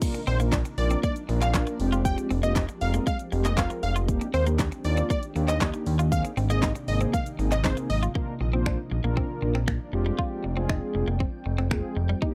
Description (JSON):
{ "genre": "dance-pop", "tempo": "118 BPM", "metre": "4/4", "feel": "straight", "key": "unclear", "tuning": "A4 = 440 Hz", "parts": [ { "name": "mellow synth brass", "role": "accompaniment", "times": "0.0-12.3 s", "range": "Ab3 to C5", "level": "-34 LUFS", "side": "equal", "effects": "chorus, sidechain pumping" }, { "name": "shimmering ambient pad", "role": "sustained chords", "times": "0.0-12.3 s", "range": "C3 to G5", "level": "-39 LUFS", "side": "equal", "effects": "chorus, built-in reverb, sidechain pumping" }, { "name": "pop drum kit", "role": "drums", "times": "0.0-12.3 s", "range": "crash cymbal, finger snaps, handclaps, hi-hat, kick drum, shaker, snare drum", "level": "-31 LUFS", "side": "equal", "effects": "none" }, { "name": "clean electric guitar", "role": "riff", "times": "0.1-12.3 s", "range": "G3 to F4", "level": "-36 LUFS", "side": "equal", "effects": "subtle chorus" }, { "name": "plucky unison lead", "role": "melody", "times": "0.3-8.0 s", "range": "C5 to G5", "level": "-33 LUFS", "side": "equal", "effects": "sidechain pumping" }, { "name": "fat analog bass", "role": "bass", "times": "0.3-12.1 s", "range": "F1 to Eb2", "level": "-28 LUFS", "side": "equal", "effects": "sidechain pumping" } ], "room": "little or no reverb", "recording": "dry, close 1970s-style studio recording", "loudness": "-26 LUFS", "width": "mono", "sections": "0.0-8.2 A section; 8.2-12.3 B section", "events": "none", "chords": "0.0 Bb; 1.8 Fmadd9; 4.1 Ebmaj7; 6.1 Abadd9; 8.2 Bb; 9.9 Fmadd9" }